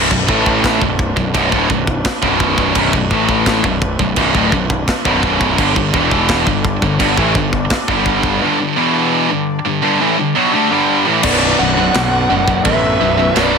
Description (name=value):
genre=heavy metal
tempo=85 BPM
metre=4/4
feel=straight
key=B minor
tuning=A4 = 440 Hz
part: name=pipe organ, strings celeste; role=sustained chords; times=0.0-13.6 s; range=F#3 to D5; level=-28 LUFS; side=left 2 dB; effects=none
part: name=crunchy overdriven guitar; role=riff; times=0.0-13.6 s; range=B1 to A3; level=-21 LUFS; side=equal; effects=none
part: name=heavy high-gain guitar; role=riff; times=0.0-13.6 s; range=B1 to A3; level=-17 LUFS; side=right 13 dB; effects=distortion
part: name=high-gain distorted guitar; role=riff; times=0.0-13.6 s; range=B1 to A3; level=-19 LUFS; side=left 13 dB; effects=distortion
part: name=fuzz picked electric bass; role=bass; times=0.0-13.6 s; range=B0 to B1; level=-20 LUFS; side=equal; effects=overdrive
part: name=tight metal drum kit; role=drums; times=0.1-13.5 s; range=crash cymbal, kick drum, snare drum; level=-18 LUFS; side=equal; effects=none
part: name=bluesy overdriven lead guitar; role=melody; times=11.2-13.6 s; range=D5 to F#5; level=-17 LUFS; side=equal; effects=distortion
part: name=high-gain lead guitar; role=second line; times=11.3-13.6 s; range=B4 to D5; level=-24 LUFS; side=equal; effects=distortion
room=light reverb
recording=none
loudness=-12 LUFS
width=side -5 dB against mid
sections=0.0-11.2 A section; 11.2-13.6 B section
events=none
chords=0.0 Bm; 5.6 G5; 11.2 Bm